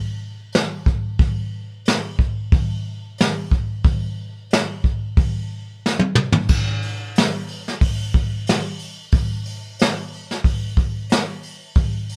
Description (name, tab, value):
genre	metal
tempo	91 BPM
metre	4/4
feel	straight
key	none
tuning	none
part	jazz brush drum kit	drums	0.5-12.2 s	crash cymbal, hi-hat, kick drum, snare drum, toms	-21 LUFS	equal	none
room	light reverb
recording	band playing live in one room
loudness	-21 LUFS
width	mono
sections	0.0-6.5 A section; 6.5-12.2 B section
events	drum fill 5.8-6.5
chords	none